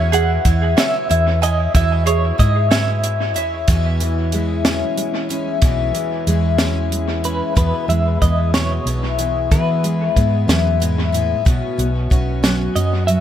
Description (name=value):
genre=indie folk with a building arrangement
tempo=62 BPM (dotted quarters)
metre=6/8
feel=straight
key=E major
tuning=A4 = 440 Hz
part: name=picked twelve-string acoustic guitar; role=accompaniment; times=0.0-13.2 s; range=E2 to F#4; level=-24 LUFS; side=left 8 dB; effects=dub echo
part: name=ukulele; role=arpeggios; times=0.0-3.7 s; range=E4 to G#5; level=-23 LUFS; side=right 6 dB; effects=dub echo
part: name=hollow-body short-scale fingered electric bass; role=bass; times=0.0-13.2 s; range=B1 to E3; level=-18 LUFS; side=equal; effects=none
part: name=semi-hollow electric guitar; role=melody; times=0.1-3.4, 7.3-13.2 s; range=B4 to F#5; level=-24 LUFS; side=right 3 dB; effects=tremolo, dub echo
part: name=compact cocktail drum kit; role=drums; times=0.1-13.2 s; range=hi-hat, kick drum, snare drum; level=-19 LUFS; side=equal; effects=dub echo
part: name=fingerpicked steel-string acoustic guitar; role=accompaniment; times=3.7-13.2 s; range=E2 to C#4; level=-24 LUFS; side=equal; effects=dub echo
room=little or no reverb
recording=echo-heavy mix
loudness=-15 LUFS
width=side -10 dB against mid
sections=0.0-3.7 A section; 3.7-7.6 B section; 7.6-13.2 C section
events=none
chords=0.0 E6; 7.6 E; 11.4 Bsus2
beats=0.77 | 1.74 2.71 | 3.68 4.65 | 5.62 6.59 | 7.56 8.53 | 9.51 10.48 | 11.45 12.42